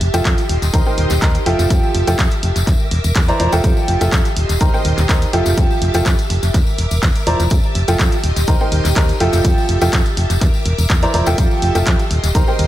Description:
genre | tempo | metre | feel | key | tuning
piano house | 124 BPM | 4/4 | swing 53% on 16ths | F major | A4 = 440 Hz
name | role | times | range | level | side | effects
string machine, violins | sustained chords | 0.0-12.7 s | G4 to D6 | -25 LUFS | equal | ensemble chorus, sidechain pumping
solid FM bass | bass | 0.0-12.7 s | Eb1 to F2 | -17 LUFS | equal | sidechain pumping
punchy analog drum machine | drums | 0.0-12.7 s | handclaps, hi-hat | -24 LUFS | equal | studio ambience, dub echo
bright upright piano | riff | 0.1-12.7 s | Eb3 to Bb5 | -19 LUFS | right 1 dB | sidechain pumping, dub echo
tambourine | percussion | 0.1-12.6 s | none | -30 LUFS | left 7 dB | dub echo
electronic kick drum | drums | 0.3-12.5 s | none | -16 LUFS | equal | studio ambience
room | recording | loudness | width
little or no reverb | echo-heavy mix | -13 LUFS | side -14 dB against mid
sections
0.0-12.7 A section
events
none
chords
0.5 Eb6; 1.5 Fmaj9; 2.7 C9/E; 3.6 Fmaj9; 4.4 Eb6; 5.3 Fmaj9; 6.5 C9/E; 7.5 Fmaj9; 8.2 Eb6; 9.2 Fmaj9; 10.4 C9/E; 11.4 Fmaj9; 12.1 Eb6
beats
0.25 0.74 1.22 | 1.70 2.19 2.67 3.16 | 3.64 4.12 4.61 5.09 | 5.58 6.06 6.54 7.03 | 7.51 7.99 8.48 8.96 | 9.45 9.93 10.41 10.90 | 11.38 11.87 12.35

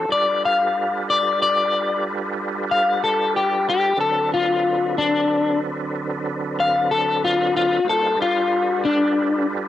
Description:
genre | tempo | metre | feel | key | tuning
blues | 62 BPM (dotted quarters) | 12/8 | straight | unclear | A4 = 441 Hz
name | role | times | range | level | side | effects
electric guitar at the edge of break-up | melody | 0.0-9.5 s | D4 to F5 | -18 LUFS | left 3 dB | harmonic tremolo, cassette tape
tonewheel organ | sustained chords | 0.0-9.7 s | D3 to C5 | -25 LUFS | right 3 dB | chorus vibrato, fast rotary speaker
room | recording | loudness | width
light reverb | home recording on cassette | -18 LUFS | side -12 dB against mid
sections
0.0-9.7 A section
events
none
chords
0.1 G9; 4.0 D6; 7.8 G9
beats
| 0.09 1.06 2.03 3.00 | 3.97 4.94 5.91 6.88 | 7.84 8.81

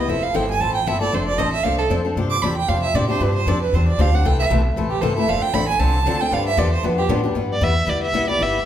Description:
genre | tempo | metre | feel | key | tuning
acoustic string swing (jazz manouche) | 231 BPM | 4/4 | swing 55% on 8ths | unclear | A4 = 440 Hz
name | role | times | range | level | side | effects
warm violin | second line | 0.0-7.1 s | G4 to D6 | -22 LUFS | right 5 dB | none
picked old ladder-braced acoustic guitar | accompaniment | 0.0-8.6 s | C3 to A4 | -23 LUFS | left 4 dB | none
upright bass | bass | 0.0-8.6 s | F1 to A2 | -21 LUFS | equal | none
warm violin | melody | 7.5-8.7 s | D5 to E5 | -20 LUFS | right 1 dB | none
room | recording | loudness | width
wet recital hall reverb, RT60 1.6 s | recorded in a church or concert hall | -17 LUFS | side -10 dB against mid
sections
0.0-7.4 A section; 7.4-8.7 A section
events
violin solo 0.0-7.4, 7.4-8.7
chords
0.1 Fmaj7; 1.1 Dm7/F; 2.2 G7sus4; 4.2 C6; 5.3 Dm7; 6.3 G7; 7.4 G6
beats
| 0.09 0.35 0.61 0.87 | 1.13 1.39 1.65 1.91 | 2.17 2.43 2.69 2.95 | 3.21 3.47 3.73 3.98 | 4.25 4.50 4.76 5.02 | 5.28 5.54 5.80 6.06 | 6.32 6.58 6.84 7.10 | 7.36 7.62 7.88 8.13 | 8.39

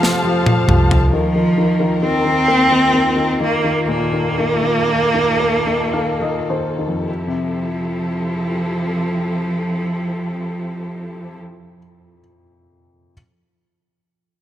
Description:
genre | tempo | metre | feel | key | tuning
six-eight pop ballad | 34-45 BPM (dotted quarters) | 6/8 | straight | F major | A4 = 440 Hz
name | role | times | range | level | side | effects
warm cello | melody | 0.0-11.4 s | F3 to C4 | -18 LUFS | right 1 dB | slapback echo
clear baby grand piano | accompaniment | 0.0-13.1 s | F2 to F5 | -22 LUFS | left 3 dB | none
warm studio string section | sustained chords | 0.0-11.4 s | Eb2 to A5 | -25 LUFS | left 1 dB | none
fingerpicked steel-string acoustic guitar | arpeggios | 0.0-1.7 s | F3 to G4 | -26 LUFS | right 4 dB | slapback echo
vintage muted fingered electric bass | bass | 0.0-1.1 s | C2 to F2 | -14 LUFS | equal | none
modern studio drum kit | drums | 0.0-1.1 s | snare drum, toms | -18 LUFS | equal | none
room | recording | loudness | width
light reverb, studio ambience | none | -15 LUFS | side -11 dB against mid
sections
0.0-1.1 A section; 1.1-7.1 B section; 7.1-10.6 C section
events
drum fill 0.0-1.1; slowing down 1.1-7.1; grand piano fill 5.4-7.1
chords
0.0 Fadd9; 1.1 Ebsus2; 7.1 Fmaj7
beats
| 1.13 2.48 | 3.90 5.41 | 7.08 8.85

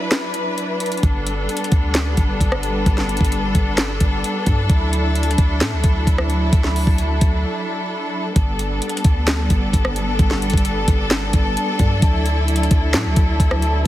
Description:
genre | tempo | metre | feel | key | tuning
hip hop, trap | 131 BPM | 4/4 | half-time | unclear | A4 = 438 Hz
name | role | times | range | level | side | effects
rich symphonic string section | sustained chords | 0.0-13.9 s | F#3 to B4 | -22 LUFS | equal | none
trap drum kit | drums | 0.1-13.7 s | handclaps, hi-hat, kick drum, rim click, snare drum | -18 LUFS | equal | none
warm 808-style bass | bass | 1.0-13.8 s | G1 to A2 | -20 LUFS | equal | none
room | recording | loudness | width
digital ambience | heavily compressed radio sound, multiband compression | -16 LUFS | side -14 dB against mid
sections
0.0-8.4 A section; 8.4-13.9 B section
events
break 0.0-1.0, 7.4-8.4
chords
0.0 Dadd9; 1.0 Gadd9; 4.7 Dadd9; 8.4 Gadd9; 12.0 Dadd9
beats
0.12 0.57 | 1.03 1.49 1.95 2.41 | 2.86 3.32 3.78 4.24 | 4.70 5.15 5.61 6.07 | 6.53 6.99 7.44 7.90 | 8.36 8.82 9.28 9.73 | 10.19 10.65 11.11 11.57 | 12.02 12.48 12.94 13.40 | 13.86

